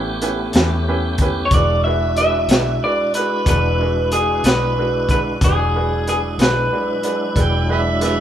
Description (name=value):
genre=slow blues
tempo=62 BPM (dotted quarters)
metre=12/8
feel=straight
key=E mixolydian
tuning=A4 = 440 Hz
part: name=bright upright piano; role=accompaniment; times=0.0-8.2 s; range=C#4 to B4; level=-25 LUFS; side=right 4 dB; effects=none
part: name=tonewheel organ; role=sustained chords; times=0.0-8.2 s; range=F#3 to G4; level=-25 LUFS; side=left 1 dB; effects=slow rotary speaker, overdrive, chorus vibrato
part: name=vintage muted fingered electric bass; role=bass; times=0.0-8.2 s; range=E1 to E2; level=-22 LUFS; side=left 1 dB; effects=none
part: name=crunchy breakbeat drum kit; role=drums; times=0.2-8.2 s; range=hi-hat, kick drum, snare drum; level=-18 LUFS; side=equal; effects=none
part: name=electric guitar through a small old amp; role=melody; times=1.5-7.7 s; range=G#4 to E5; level=-19 LUFS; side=equal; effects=spring reverb
part: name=warm harmonica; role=second line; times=7.4-8.2 s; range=G4 to G5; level=-21 LUFS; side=right 5 dB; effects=overdrive
room=moderate large studio reverb, RT60 1.4 s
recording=band playing live in one room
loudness=-15 LUFS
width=side -10 dB against mid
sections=0.0-8.2 A section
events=none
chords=0.0 A9; 1.5 E9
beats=0.55 | 1.52 2.50 3.47 4.44 | 5.41 6.39 7.36